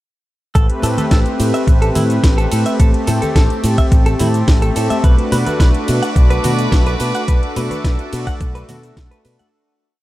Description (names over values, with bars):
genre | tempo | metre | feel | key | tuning
nu-disco, nu disco | 107 BPM | 4/4 | straight | A dorian | A4 = 439 Hz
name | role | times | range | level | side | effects
warm analog pad | accompaniment | 0.5-9.5 s | A3 to B4 | -20 LUFS | equal | chorus, sidechain pumping, diffuse ambient delay
cabasa and congas | percussion | 0.5-9.5 s | none | -27 LUFS | left 1 dB | none
direct-recorded clean electric guitar | riff | 0.6-9.5 s | E4 to F#5 | -25 LUFS | right 1 dB | lush chorus, diffuse ambient delay
picked electric bass with an envelope filter | bass | 0.6-9.4 s | A1 to B2 | -18 LUFS | equal | none
electronic kick drum | drums | 0.6-9.1 s | none | -12 LUFS | equal | none
house drum kit | drums | 0.6-9.5 s | hi-hat, ride cymbal, shaker, snare drum | -26 LUFS | equal | overdrive
rich chamber violin section | sustained chords | 5.0-9.5 s | B4 to D6 | -26 LUFS | right 2 dB | sidechain pumping
room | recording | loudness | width
light reverb | none | -12 LUFS | side -16 dB against mid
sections
0.6-9.5 drop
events
drop 0.6-9.5; fade-out 6.5-9.5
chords
0.6 Am9; 5.0 Bm7